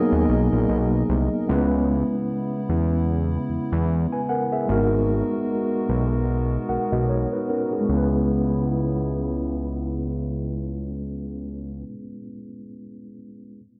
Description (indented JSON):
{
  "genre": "contemporary R&B",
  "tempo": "75 BPM",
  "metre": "4/4",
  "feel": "swing 58% on 16ths",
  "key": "C# dorian",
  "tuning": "A4 = 440 Hz",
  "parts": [
    { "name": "mellow tine electric piano", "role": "accompaniment", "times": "0.0-13.6 s", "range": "F#3 to G#5", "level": "-27 LUFS", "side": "equal", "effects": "none" },
    { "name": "hollow soft pad", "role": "sustained chords", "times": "0.0-11.8 s", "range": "C#3 to G#5", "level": "-34 LUFS", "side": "equal", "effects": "chorus" },
    { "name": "fat analog bass", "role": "bass", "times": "0.1-11.8 s", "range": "G#1 to E2", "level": "-27 LUFS", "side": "equal", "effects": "none" }
  ],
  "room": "moderate concert hall reverb, RT60 2.2 s",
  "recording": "dry, gritty hardware recording, low-pass filter",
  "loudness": "-23 LUFS",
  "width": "mono",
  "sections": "0.0-1.5 A section; 1.5-7.9 B section; 7.9-11.1 C section",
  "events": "none",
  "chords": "0.0 Bmaj7; 1.5 C#m7; 4.7 G#m9; 7.9 C#m7"
}